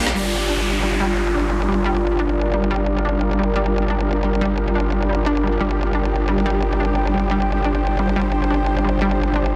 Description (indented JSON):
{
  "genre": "drum and bass",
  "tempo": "176 BPM",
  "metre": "4/4",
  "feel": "straight",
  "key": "G minor",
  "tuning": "A4 = 441 Hz",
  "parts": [
    { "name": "swarming drone", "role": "sustained chords", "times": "0.0-9.6 s", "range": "G3 to D5", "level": "-28 LUFS", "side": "equal", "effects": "built-in reverb" },
    { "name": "growl bass", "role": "bass", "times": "0.0-9.6 s", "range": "G1 to Bb1", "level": "-23 LUFS", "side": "equal", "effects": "chorus, tube saturation" },
    { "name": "warbly tape-like pad", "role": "texture", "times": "0.0-9.6 s", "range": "F4 to G5", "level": "-28 LUFS", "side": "equal", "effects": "chorus, built-in reverb" },
    { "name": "analog pluck", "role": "arpeggios", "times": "0.2-9.5 s", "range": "G3 to D4", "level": "-27 LUFS", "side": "equal", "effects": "chorus, delay" },
    { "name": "downlifter", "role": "sound effects", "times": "0.2-2.9 s", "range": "none", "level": "-29 LUFS", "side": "equal", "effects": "none" }
  ],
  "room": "light reverb, digital ambience",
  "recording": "dense, heavily limited modern master",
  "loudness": "-20 LUFS",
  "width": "mono",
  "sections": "0.2-9.6 A section",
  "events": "none",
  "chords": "0.2 Gm",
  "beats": "| 0.15 0.49 0.83 1.17 | 1.51 1.85 2.20 2.54 | 2.88 3.22 3.56 3.90 | 4.24 4.58 4.92 5.26 | 5.61 5.95 6.29 6.63 | 6.97 7.31 7.65 7.99 | 8.33 8.67 9.01 9.36"
}